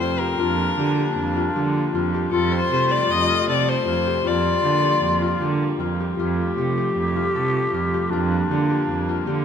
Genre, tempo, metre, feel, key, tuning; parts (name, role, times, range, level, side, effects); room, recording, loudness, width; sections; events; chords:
contemporary instrumental, chamber music in an uneven meter; 155 BPM; 5/4; straight; A4 = 441 Hz
warm violin; melody; 0.0-5.4 s; A4 to Eb5; -23 LUFS; left 7 dB
growling clarinet; second line; 0.0-9.4 s; C4 to G4; -25 LUFS; left 1 dB
rich chamber string section; sustained chords; 0.0-9.4 s; F3 to Bb3; -30 LUFS; right 1 dB
concert harp; arpeggios; 0.0-9.4 s; C4 to A4; -26 LUFS; left 8 dB
dark cello; bass; 0.0-9.4 s; F2 to D3; -24 LUFS; right 5 dB
moderate concert hall reverb, RT60 2.2 s; -19 LUFS; side -8 dB against mid
0.0-9.4 A section
0.4 Gm7/F; 2.3 Fadd9; 4.3 Gm7/F; 6.2 Fadd9; 8.1 Gm7/F